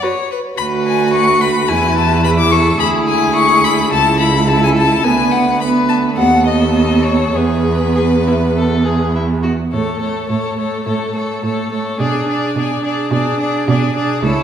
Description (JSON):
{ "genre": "quick classical-period movement for string quartet", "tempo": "107 BPM", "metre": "4/4", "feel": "rubato", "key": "A major", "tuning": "A4 = 441 Hz", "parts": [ { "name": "rich violin", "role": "melody", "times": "0.0-14.4 s", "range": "B4 to D6", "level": "-18 LUFS", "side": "left 5 dB", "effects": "none" }, { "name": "rich violin", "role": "second line", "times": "0.0-14.4 s", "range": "E4 to B4", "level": "-22 LUFS", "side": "left 2 dB", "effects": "none" }, { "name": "warm viola", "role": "accompaniment", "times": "0.0-14.4 s", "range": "A3 to F#4", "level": "-18 LUFS", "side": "right 3 dB", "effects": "none" }, { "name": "clear cello", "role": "bass", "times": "0.6-14.4 s", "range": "C#2 to B2", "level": "-17 LUFS", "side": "right 3 dB", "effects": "none" } ], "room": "wet recital hall reverb, RT60 1.6 s", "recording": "heard from further back in the room", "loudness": "-12 LUFS", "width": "side -8 dB against mid", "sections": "0.0-9.7 A section; 9.7-14.4 B section", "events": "none", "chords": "0.0 B5; 0.6 Bm/D; 1.7 E5; 2.8 E7/D; 3.9 A/C#; 5.0 Bm/D; 6.2 B7/D#; 7.3 E; 9.7 A; 12.0 G#dim/B" }